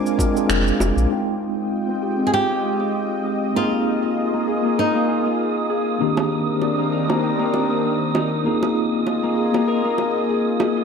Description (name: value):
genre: sunset chillout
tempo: 98 BPM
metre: 4/4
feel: swing 55% on 16ths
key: unclear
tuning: A4 = 440 Hz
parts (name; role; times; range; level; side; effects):
- flamenco guitar; melody; 0.0-5.7 s; Eb4 to Ab4; -24 LUFS; right 1 dB; tape echo
- mellow tine electric piano; accompaniment; 0.0-10.8 s; Eb3 to G5; -23 LUFS; equal; medium stereo tremolo, auto-pan, tape echo
- lush unison pad; sustained chords; 0.0-10.8 s; Eb3 to D6; -24 LUFS; equal; chorus
- electronic shaker and finger snaps; drums; 0.1-1.1 s; none; -26 LUFS; right 1 dB; none
- bongos; percussion; 0.2-0.9, 6.2-10.7 s; none; -26 LUFS; right 4 dB; none
- warm sub bass; bass; 0.5-1.1 s; F1 to Bb1; -20 LUFS; equal; none
- Celtic harp; arpeggios; 1.1-10.8 s; Bb3 to Eb5; -24 LUFS; left 4 dB; low-pass filter, tape echo
- wind-like tuned noise texture; texture; 2.1-10.8 s; Eb6; -30 LUFS; right 6 dB; built-in reverb
room: moderate lush hall reverb, RT60 2.1 s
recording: dark, warm production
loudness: -18 LUFS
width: side -6 dB against mid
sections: 0.0-1.1 A section; 1.1-10.8 B section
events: band accent 0.5-0.8; filter sweep on harp 1.1-10.8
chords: 0.0 Bb7; 1.1 Fm9; 3.6 Bb7sus4; 6.0 Cm9; 8.5 Bb7sus4